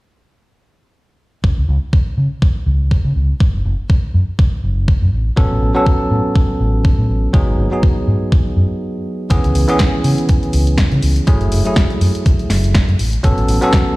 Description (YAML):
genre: nu-disco, nu disco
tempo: 122 BPM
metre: 4/4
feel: swing 56% on 16ths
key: C# minor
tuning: A4 = 439 Hz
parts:
  - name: fingered electric bass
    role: bass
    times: 1.4-13.6 s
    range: F#1 to C#3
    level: -15 LUFS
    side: equal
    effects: none
  - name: electronic kick drum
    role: drums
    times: 1.4-13.8 s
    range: none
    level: -13 LUFS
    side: equal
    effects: overdrive
  - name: bell-like tine electric piano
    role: accompaniment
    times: 5.4-14.0 s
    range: E3 to A4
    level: -18 LUFS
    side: equal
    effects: sidechain pumping, analog delay
  - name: house drum kit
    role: drums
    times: 9.3-13.8 s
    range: hi-hat, snare drum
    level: -22 LUFS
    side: equal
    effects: none
room: digital ambience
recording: played on a big sound system in a bare room, stone room reverb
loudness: -13 LUFS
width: side -20 dB against mid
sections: 1.4-9.3 A section; 9.3-14.0 B section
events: break 8.8-9.3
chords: 1.4 N.C.; 5.1 A69; 7.3 G#m7; 9.3 C#m7; 11.3 F#m9; 13.0 A69